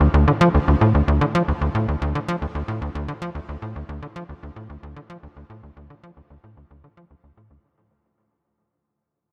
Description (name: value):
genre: ambient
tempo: 112 BPM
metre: 4/4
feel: straight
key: D minor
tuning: A4 = 440 Hz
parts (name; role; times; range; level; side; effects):
- tight sequencer bass; solo; 0.0-7.6 s; D2 to F3; -21 LUFS; equal; analog delay
room: moderate huge ambient reverb, RT60 7.1 s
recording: none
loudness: -21 LUFS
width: mono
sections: 0.0-7.6 A section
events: fade-out 0.0-7.6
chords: none